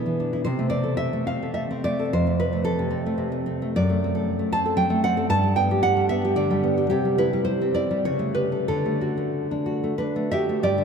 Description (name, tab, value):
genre	romantic piece for solo classical guitar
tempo	89-122 BPM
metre	3/4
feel	rubato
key	unclear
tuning	A4 = 440 Hz
part	nylon-string guitar	solo	0.0-10.8 s	F2 to A5	-21 LUFS	equal	none
room	wet cathedral reverb, RT60 5.2 s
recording	in a vast, echoing space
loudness	-21 LUFS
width	side -6 dB against mid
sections	0.0-10.6 A section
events	none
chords	0.5 Am/C; 2.1 F; 3.8 D7/F#; 5.3 G; 6.9 C; 8.0 A7/C#; 8.7 D